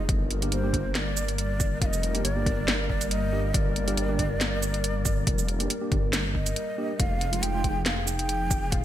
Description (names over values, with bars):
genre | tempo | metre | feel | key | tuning
deep dubstep | 139 BPM | 4/4 | swing 54% on 16ths, half-time | unclear | A4 = 440 Hz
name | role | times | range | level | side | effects
dark analog pad | sustained chords | 0.0-8.8 s | F3 to Bb4 | -34 LUFS | left 2 dB | chorus
dark detuned saw bass | bass | 0.0-8.8 s | Eb1 to G1 | -29 LUFS | equal | none
electronic kick drum | drums | 0.1-8.8 s | none | -28 LUFS | equal | none
garage drum kit | drums | 0.1-8.8 s | hi-hat, shaker, snare drum | -29 LUFS | right 1 dB | gated reverb
mellow tine electric piano | stabs | 0.4-7.7 s | Ab3 to G4 | -36 LUFS | right 4 dB | lush chorus, dub echo
breathy mellow ney | melody | 0.5-8.8 s | C5 to G5 | -33 LUFS | right 1 dB | dub echo
room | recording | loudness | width
light reverb | bright 1980s-style digital production | -24 LUFS | side -12 dB against mid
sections
0.0-8.8 A section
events
break 6.6-7.0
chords
0.1 Gm; 7.0 Fm7